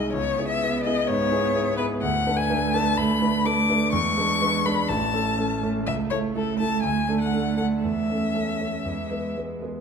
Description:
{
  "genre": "quick classical-period movement for piano trio",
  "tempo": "124 BPM",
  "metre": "4/4",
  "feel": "rubato",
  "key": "A major",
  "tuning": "A4 = 439 Hz",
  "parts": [
    { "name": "rich violin", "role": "melody", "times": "0.0-9.3 s", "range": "A4 to D6", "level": "-25 LUFS", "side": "left 6 dB", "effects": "none" },
    { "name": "warm cello", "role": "second line", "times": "0.0-9.7 s", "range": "G#3 to B3", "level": "-27 LUFS", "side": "right 8 dB", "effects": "none" },
    { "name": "warm concert grand piano", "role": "accompaniment", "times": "0.0-9.8 s", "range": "A1 to B4", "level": "-26 LUFS", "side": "left 1 dB", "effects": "none" }
  ],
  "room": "wet recital hall reverb, RT60 1.6 s",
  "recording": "none",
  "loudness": "-21 LUFS",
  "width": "side -6 dB against mid",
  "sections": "0.0-9.8 A section",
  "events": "none",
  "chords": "0.1 C#m7; 2.0 Bm7/D; 3.9 E7; 4.9 A; 5.9 A/C#; 6.8 D5; 7.8 A/E; 8.9 E"
}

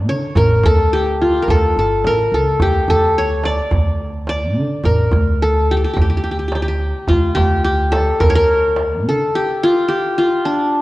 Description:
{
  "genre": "Arabic maqam ensemble",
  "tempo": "107 BPM",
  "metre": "4/4",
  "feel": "straight",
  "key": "D maqam nahawand",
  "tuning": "A4 = 438 Hz",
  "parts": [
    { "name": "qanun", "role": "melody", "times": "0.0-10.8 s", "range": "D4 to D5", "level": "-16 LUFS", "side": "left 1 dB", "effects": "none" },
    { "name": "upright bass", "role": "bass", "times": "0.0-9.3 s", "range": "G1 to D3", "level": "-19 LUFS", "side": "equal", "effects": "none" },
    { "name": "darbuka", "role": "percussion", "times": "0.1-9.1 s", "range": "none", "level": "-20 LUFS", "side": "right 1 dB", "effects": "none" }
  ],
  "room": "moderate concert hall reverb, RT60 1.8 s",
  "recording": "worn, warbling old tape, cassette tape, warbly pitch drift",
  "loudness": "-14 LUFS",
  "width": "side -18 dB against mid",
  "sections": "0.0-10.8 A section",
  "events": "none",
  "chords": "none"
}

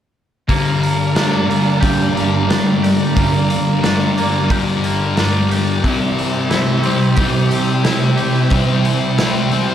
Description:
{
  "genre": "rock, shoegaze and dream pop",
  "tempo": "90 BPM",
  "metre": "4/4",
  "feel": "straight",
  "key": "G dorian",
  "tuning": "A4 = 438 Hz",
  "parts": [
    { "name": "ethereal airy pad", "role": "sustained chords", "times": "1.2-9.7 s", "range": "G2 to G5", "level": "-23 LUFS", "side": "right 2 dB", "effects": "ensemble chorus, built-in reverb" },
    { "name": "twangy electric guitar", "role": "arpeggios", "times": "0.5-9.7 s", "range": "E3 to G4", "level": "-23 LUFS", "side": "right 4 dB", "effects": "wide subtle chorus, tape echo" },
    { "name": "crunchy overdriven guitar", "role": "riff", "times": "0.5-9.7 s", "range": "G2 to Bb4", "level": "-21 LUFS", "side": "right 7 dB", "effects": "reverse reverb" },
    { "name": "thick fuzz guitar", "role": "riff", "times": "0.5-9.7 s", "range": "G2 to C4", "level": "-17 LUFS", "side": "left 5 dB", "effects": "distortion, lush chorus" },
    { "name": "raw garage drum kit", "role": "drums", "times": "0.5-9.7 s", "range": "hi-hat, kick drum, snare drum", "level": "-21 LUFS", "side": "equal", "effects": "none" }
  ],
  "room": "light reverb, small room ambience",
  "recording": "none",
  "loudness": "-13 LUFS",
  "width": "side -10 dB against mid",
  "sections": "0.5-9.7 A section",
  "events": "none",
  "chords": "0.5 Gm; 5.8 C"
}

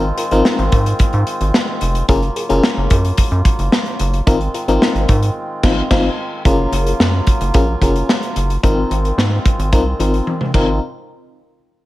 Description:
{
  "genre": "early-eighties boogie funk",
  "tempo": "110 BPM",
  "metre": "4/4",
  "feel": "straight",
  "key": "Ab mixolydian",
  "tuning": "A4 = 437 Hz",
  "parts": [
    { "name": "FM electric piano with tremolo", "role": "accompaniment", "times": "0.0-10.8 s", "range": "C4 to Bb4", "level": "-18 LUFS", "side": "left 2 dB", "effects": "none" },
    { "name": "mellow accordion", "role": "sustained chords", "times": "0.0-10.8 s", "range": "Db3 to F4", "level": "-25 LUFS", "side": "equal", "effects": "none" },
    { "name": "rubbery square bass", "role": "bass", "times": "0.0-10.8 s", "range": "F1 to Ab2", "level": "-17 LUFS", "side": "equal", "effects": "none" },
    { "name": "modern studio drum kit", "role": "drums", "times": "0.2-10.7 s", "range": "crash cymbal, hi-hat, kick drum, snare drum, toms", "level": "-16 LUFS", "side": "equal", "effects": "gated reverb" }
  ],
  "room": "studio reverb",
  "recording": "none",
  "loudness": "-13 LUFS",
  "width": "side -17 dB against mid",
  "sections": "0.0-6.5 A section; 6.5-10.8 B section; 10.8-11.9 C section",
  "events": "band accent 5.4-6.5; drum fill 10.3-10.8",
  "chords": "0.0 Ab6; 2.1 Gbmaj7; 4.3 Ab6; 6.5 Gbmaj7; 8.6 Ab6; 10.8 N.C."
}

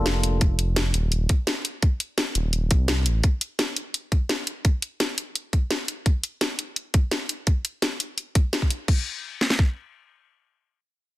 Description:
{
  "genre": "liquid drum and bass",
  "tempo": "170 BPM",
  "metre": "4/4",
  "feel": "straight",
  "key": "unclear",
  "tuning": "A4 = 438 Hz",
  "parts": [
    { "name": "smooth synth bass", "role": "bass", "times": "0.0-3.2 s", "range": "Eb1 to C2", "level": "-23 LUFS", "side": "equal", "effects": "none" },
    { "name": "garage drum kit", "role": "drums", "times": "0.1-9.0 s", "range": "crash cymbal, hi-hat, snare drum", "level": "-25 LUFS", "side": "left 1 dB", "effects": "none" },
    { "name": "garage drum kit", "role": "drums", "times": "0.4-9.7 s", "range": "kick drum, snare drum", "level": "-20 LUFS", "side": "equal", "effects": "none" }
  ],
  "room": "little or no reverb",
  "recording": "dense, heavily limited modern master",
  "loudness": "-22 LUFS",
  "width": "side -17 dB against mid",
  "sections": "0.0-8.9 A section; 8.9-11.2 B section",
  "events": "none",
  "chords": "none"
}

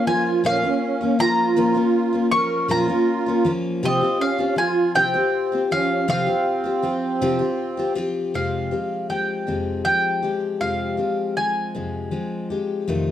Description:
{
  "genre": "acoustic folk duo or small band",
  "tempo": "53 BPM (dotted quarters)",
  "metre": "6/8",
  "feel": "straight",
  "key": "F minor",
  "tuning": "A4 = 440 Hz",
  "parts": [
    { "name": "mandolin", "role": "melody", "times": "0.0-12.5 s", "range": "Eb5 to Db6", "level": "-23 LUFS", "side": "equal", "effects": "none" },
    { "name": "musette accordion", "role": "second line", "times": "0.0-7.9 s", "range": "C4 to Bb4", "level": "-23 LUFS", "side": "right 4 dB", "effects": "none" },
    { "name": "picked steel-string acoustic guitar", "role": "accompaniment", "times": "0.0-13.1 s", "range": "F2 to G4", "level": "-23 LUFS", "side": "left 3 dB", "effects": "none" }
  ],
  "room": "light reverb",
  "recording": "dark, warm production",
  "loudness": "-19 LUFS",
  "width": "side -11 dB against mid",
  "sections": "0.0-8.3 A section; 8.3-13.1 B section",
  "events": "none",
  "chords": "0.0 Bbm; 3.8 Csus4; 8.3 Fmadd9"
}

